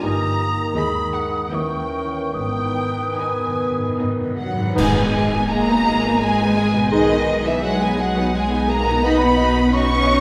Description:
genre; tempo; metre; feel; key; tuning
classical, slow romantic movement for symphony orchestra; 69-90 BPM; 3/4; rubato; G# minor; A4 = 441 Hz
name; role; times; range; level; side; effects
warm symphonic violin section; melody; 0.0-10.2 s; D#5 to C#6; -27 LUFS; equal; none
dark clarinet; second line; 0.0-9.3 s; D#4 to B4; -30 LUFS; equal; none
warm symphonic violin section; second line; 0.0-10.2 s; G4 to G#5; -31 LUFS; equal; none
mellow bassoon; accompaniment; 0.0-9.3 s; D#3 to B3; -30 LUFS; equal; none
mellow French horn section; sustained chords; 0.0-10.2 s; D#3 to D#4; -27 LUFS; equal; none
concert harp; arpeggios; 0.0-10.2 s; G2 to D#5; -31 LUFS; equal; none
rich symphonic double bass section; bass; 0.0-10.2 s; G1 to D#2; -29 LUFS; equal; none
warm symphonic cello section; bass; 0.0-10.2 s; D#2 to C#4; -28 LUFS; equal; none
cymbal swell, clash cymbals and concert bass drum; percussion; 0.0-6.2 s; none; -32 LUFS; equal; none
mellow silver concert flute; second line; 0.1-10.2 s; D#5 to D#6; -28 LUFS; equal; none
rich symphonic viola section; accompaniment; 0.1-10.2 s; G#3 to G#4; -28 LUFS; equal; none
timpani; percussion; 2.3-5.8 s; G#2; -31 LUFS; equal; none
room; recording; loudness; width
wet concert hall reverb, RT60 2.0 s; recorded in a church or concert hall; -19 LUFS; mono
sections
0.0-4.8 A section; 4.8-10.2 A section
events
timpani fill 2.3-4.8; band accent 4.8-5.5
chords
0.0 D#/G; 0.8 G#m/D#; 1.5 D#7b9; 2.3 G#m; 6.9 G#m/B; 9.0 B

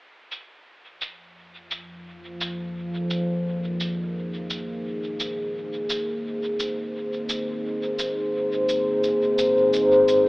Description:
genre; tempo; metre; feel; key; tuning
ambient dub; 86 BPM; 4/4; swing 60% on 16ths; F minor; A4 = 436 Hz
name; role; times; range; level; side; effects
deep dark ambient pad; sustained chords; 2.0-10.3 s; F3 to C5; -22 LUFS; equal; chorus, built-in reverb
cabasa; drums; 0.3-10.2 s; none; -32 LUFS; right 1 dB; overdrive, low-pass filter on perc, low-pass filter on room, dub echo
room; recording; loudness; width
wet spring reverb, RT60 1.7 s; echo-heavy mix, telephone sound; -23 LUFS; side -21 dB against mid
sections
0.3-10.3 A section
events
filter sweep on ambient pad 0.3-10.3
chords
0.3 Fm7; 5.9 Bbsus2

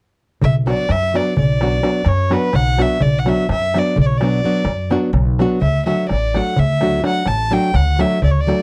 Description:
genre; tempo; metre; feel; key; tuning
balkan folk, Balkan wedding band; 254 BPM (eighths); 11/8; straight; B minor; A4 = 439 Hz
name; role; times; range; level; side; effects
dark violin; melody; 0.4-8.6 s; B4 to A5; -23 LUFS; equal; none
upright bass; bass; 0.4-8.5 s; A1 to F#2; -21 LUFS; equal; none
darbuka; percussion; 0.4-8.6 s; none; -23 LUFS; equal; none
nylon-string guitar; accompaniment; 0.7-8.6 s; F#3 to F#4; -21 LUFS; equal; none
room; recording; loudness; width
little or no reverb; dry, close 1970s-style studio recording; -17 LUFS; mono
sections
0.4-8.6 A section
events
none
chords
0.4 Bm; 5.6 D

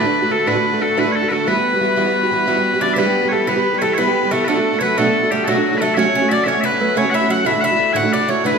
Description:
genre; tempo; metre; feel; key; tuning
celtic folk, Celtic slip jig; 120 BPM (dotted quarters); 9/8; straight; E dorian; A4 = 440 Hz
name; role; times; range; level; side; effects
loud bright bagpipes; melody; 0.0-8.6 s; F#4 to G#5; -18 LUFS; left 1 dB; none
accordion; second line; 0.0-8.6 s; F#4 to F#5; -23 LUFS; left 6 dB; none
picked twelve-string acoustic guitar; accompaniment; 0.0-8.6 s; D2 to G4; -18 LUFS; right 4 dB; none
Irish bouzouki; second line; 2.8-8.6 s; F#3 to F#4; -24 LUFS; right 1 dB; none
room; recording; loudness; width
wet recital hall reverb, RT60 1.6 s; minimal, uncompressed stereo recording; -14 LUFS; side -5 dB against mid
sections
0.0-3.0 A section; 3.0-8.6 A section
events
none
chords
0.0 D; 1.5 Emadd9; 3.0 Em; 4.5 Bm7; 6.0 F#m; 7.5 Dadd9

